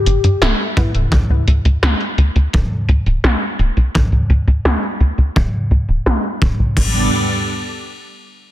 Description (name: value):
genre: synthwave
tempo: 85 BPM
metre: 4/4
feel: straight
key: G major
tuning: A4 = 441 Hz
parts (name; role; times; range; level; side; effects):
- warm velvety synth lead; melody; 0.0-0.9 s; E4 to G4; -23 LUFS; left 7 dB; chorus, ping-pong delay
- analog pluck; arpeggios; 0.0-1.0 s; A3 to B3; -29 LUFS; right 2 dB; chorus, cassette tape, ping-pong delay
- tight sequencer bass; bass; 0.1-7.1 s; D1 to G2; -14 LUFS; equal; none
- 80s electronic pad drums; drums; 0.1-6.9 s; crash cymbal, hi-hat, snare drum; -20 LUFS; equal; low-pass filter on hats, low-pass filter on snare, low-pass filter on cymbals
- kick drum; drums; 0.8-6.9 s; none; -17 LUFS; equal; none
- string machine, full ensemble; sustained chords; 6.8-7.1 s; G3 to D5; -20 LUFS; right 2 dB; phaser, ensemble chorus, sidechain pumping
room: digital ambience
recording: dense, heavily limited modern master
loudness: -14 LUFS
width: side -14 dB against mid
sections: 0.0-6.8 A section; 6.8-8.5 B section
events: filter sweep on drum 0.0-6.8; filter sweep on analog synth bass 0.0-6.8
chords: 0.0 Gadd9; 1.1 N.C.; 6.8 Gadd9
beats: 0.42 | 1.12 1.83 2.54 3.24 | 3.95 4.65 5.36 6.06 | 6.77